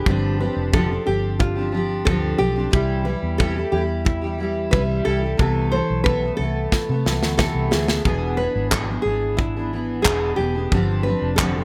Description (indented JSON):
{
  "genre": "acoustic pop",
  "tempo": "90 BPM",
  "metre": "4/4",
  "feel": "straight",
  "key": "A minor",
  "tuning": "A4 = 440 Hz",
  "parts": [
    { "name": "nylon-string guitar", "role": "melody", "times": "0.0-11.6 s", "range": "E4 to C5", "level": "-28 LUFS", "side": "equal", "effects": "none" },
    { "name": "fingerpicked steel-string acoustic guitar", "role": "accompaniment", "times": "0.0-11.6 s", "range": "E2 to A4", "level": "-26 LUFS", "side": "equal", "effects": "double-tracked" },
    { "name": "vintage muted fingered electric bass", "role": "bass", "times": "0.1-11.6 s", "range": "E1 to C3", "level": "-27 LUFS", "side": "equal", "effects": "none" },
    { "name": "modern studio drum kit", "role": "drums", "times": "0.1-11.5 s", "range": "handclaps, kick drum, snare drum", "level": "-23 LUFS", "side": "equal", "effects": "none" }
  ],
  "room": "small room ambience",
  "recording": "none",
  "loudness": "-21 LUFS",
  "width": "mono",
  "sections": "0.0-11.6 A section",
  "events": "drum fill 6.7-8.1",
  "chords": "0.1 G7sus4; 2.7 C; 5.4 Amadd9; 8.1 E7; 10.7 G7sus4",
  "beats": "| 0.06 0.72 1.39 2.06 | 2.72 3.39 4.06 4.72 | 5.39 6.05 6.72 7.39 | 8.05 8.72 9.39 10.05 | 10.72 11.38"
}